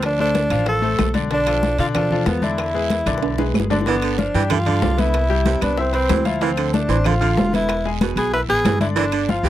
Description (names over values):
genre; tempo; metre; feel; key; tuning
latin, salsa; 188 BPM; 4/4; straight; unclear; A4 = 440 Hz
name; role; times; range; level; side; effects
breathy tenor saxophone; melody; 0.0-9.5 s; B3 to B4; -21 LUFS; equal; none
bright grand piano; accompaniment; 0.0-9.5 s; D3 to F6; -25 LUFS; left 6 dB; none
upright bass; bass; 0.0-9.5 s; E1 to B2; -22 LUFS; equal; none
bongos; percussion; 0.0-9.5 s; none; -31 LUFS; left 6 dB; none
claves; percussion; 0.0-9.3 s; none; -35 LUFS; left 16 dB; none
congas; percussion; 0.0-9.5 s; none; -23 LUFS; left 2 dB; none
guiro; percussion; 0.0-9.5 s; none; -36 LUFS; right 18 dB; none
timbales; percussion; 0.0-9.4 s; none; -28 LUFS; right 10 dB; none
breathy baritone saxophone; second line; 3.9-9.5 s; B2 to E3; -24 LUFS; right 10 dB; none
room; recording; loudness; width
little or no reverb; dry, close 1970s-style studio recording; -17 LUFS; side -13 dB against mid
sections
0.0-3.9 A section; 3.9-9.5 B section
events
drum fill 3.1-3.9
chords
0.0 Dm7; 1.3 Bm7b5; 2.6 E7; 3.9 G7; 5.1 Cmaj7; 6.4 Dm7; 7.7 E; 9.0 G5